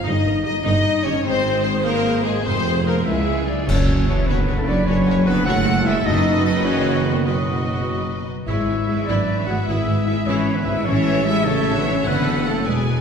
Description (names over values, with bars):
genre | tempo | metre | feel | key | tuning
cinematic, heroic adventure film score | 100 BPM (dotted quarters) | 6/8 | straight | F# minor from 3.7 s | A4 = 440 Hz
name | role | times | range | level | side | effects
warm symphonic violin section | melody | 0.0-13.0 s | Ab4 to G#5 | -30 LUFS | left 4 dB | none
mellow hollow small flute group | second line | 0.0-13.0 s | F#4 to F#5 | -32 LUFS | left 2 dB | none
rich symphonic violin section | second line | 0.0-13.0 s | Ab4 to Eb5 | -33 LUFS | left 2 dB | none
rich symphonic viola section | accompaniment | 0.0-13.0 s | Eb4 to C5 | -32 LUFS | equal | none
concert harp | arpeggios | 0.0-13.0 s | E2 to C#6 | -30 LUFS | left 6 dB | none
warm clarinet | second line | 0.1-13.0 s | F#4 to F#5 | -31 LUFS | left 1 dB | none
dark French horn section | sustained chords | 0.1-13.0 s | F#3 to F#4 | -24 LUFS | left 2 dB | none
clear symphonic double bass section | bass | 0.1-13.0 s | E1 to Db2 | -26 LUFS | right 2 dB | none
mellow tuba | bass | 0.1-13.0 s | E1 to Db2 | -26 LUFS | right 3 dB | none
rich symphonic cello section | bass | 0.1-13.0 s | Db2 to B3 | -25 LUFS | right 1 dB | none
cymbal swell, clash cymbals and concert bass drum | percussion | 1.3-4.4 s | none | -25 LUFS | equal | none
mellow trumpet section | stabs | 3.1-13.0 s | F#4 to F#5 | -29 LUFS | right 1 dB | none
clear oboe | second line | 3.7-13.0 s | F#4 to D#5 | -32 LUFS | right 1 dB | none
timpani | percussion | 3.7-6.6 s | F#2 | -28 LUFS | left 1 dB | none
room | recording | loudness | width
wet scoring stage reverb, RT60 1.5 s | recorded in a church or concert hall | -17 LUFS | side -6 dB against mid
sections
0.0-3.7 A section; 3.7-13.0 A section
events
band accent 3.7-4.1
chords
0.0 Eb/G; 1.3 Ab; 2.5 Fm; 3.1 Db7; 3.7 F#m; 6.1 B/F#; 8.5 E/G#; 10.9 A; 12.1 F#m